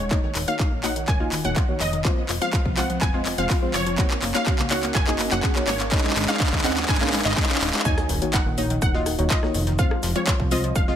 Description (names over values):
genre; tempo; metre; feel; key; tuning
progressive house; 124 BPM; 4/4; straight; Eb dorian; A4 = 443 Hz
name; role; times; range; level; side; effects
wide unison pluck; melody; 0.0-11.0 s; Db5 to Ab5; -29 LUFS; right 1 dB; ping-pong delay
analog pluck; arpeggios; 0.0-10.9 s; Eb3 to Ab4; -30 LUFS; left 1 dB; chorus, sidechain pumping, ping-pong delay
plucky analog bass; bass; 0.0-11.0 s; Eb1 to Eb2; -29 LUFS; equal; tube saturation, sidechain pumping
riser and sub drop; sound effects; 0.0-9.8 s; none; -33 LUFS; right 2 dB; none
deep mellow chord stab; stabs; 0.1-11.0 s; Ab3 to F5; -29 LUFS; left 1 dB; chorus, sidechain pumping, ping-pong delay
electronic kick drum; drums; 0.1-10.9 s; none; -23 LUFS; equal; none
house drum kit; drums; 0.1-10.9 s; handclaps, hi-hat, rim click; -26 LUFS; left 1 dB; overdrive
breakbeat sampler-style drum kit; drums; 7.9-11.0 s; hi-hat, shaker, snare drum; -37 LUFS; right 3 dB; sidechain pumping on perc, high-pass filter on perc, sidechain pumping on hats, high-pass filter on hats, high-pass filter on snare
room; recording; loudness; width
light reverb; none; -20 LUFS; side -10 dB against mid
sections
0.0-7.9 A section; 7.9-11.0 B section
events
build-up 0.0-7.9; drum fill 0.0-7.9; riser 0.0-7.9; filter sweep on synth pluck 0.0-7.9; filter sweep on synth stab 0.0-7.9; drop 7.9-11.0; impact 7.9-9.8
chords
0.1 Ebm7; 2.0 Fm; 4.0 Ebm7/Gb; 5.9 Absus4; 7.9 Ebm7; 9.8 Fm